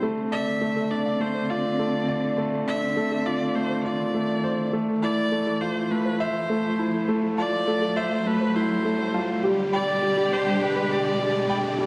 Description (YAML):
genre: piano and strings electronica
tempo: 102 BPM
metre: 4/4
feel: straight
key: unclear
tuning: A4 = 440 Hz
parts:
  - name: clear viola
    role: melody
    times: 0.0-11.8 s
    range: B4 to E5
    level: -31 LUFS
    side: equal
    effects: none
  - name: warm symphonic string section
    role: sustained chords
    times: 0.0-11.9 s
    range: B2 to A4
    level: -33 LUFS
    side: equal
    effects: none
  - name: soft round pluck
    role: arpeggios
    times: 0.0-11.9 s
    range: G4 to D6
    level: -35 LUFS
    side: equal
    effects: none
  - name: warm concert grand piano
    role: riff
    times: 0.0-11.9 s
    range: G3 to G5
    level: -28 LUFS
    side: equal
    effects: none
  - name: round analog bass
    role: bass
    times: 0.0-11.9 s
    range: none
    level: barely audible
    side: none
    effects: none
  - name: riser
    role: sound effects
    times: 0.0-11.9 s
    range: none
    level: -36 LUFS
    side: equal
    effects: none
room: wet recital hall reverb, RT60 1.5 s, studio reverb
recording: none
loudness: -25 LUFS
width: mono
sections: 0.0-11.9 A section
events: build-up 0.0-11.9; riser 0.0-11.9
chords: 0.0 Dm7; 4.7 Fmaj7; 9.4 G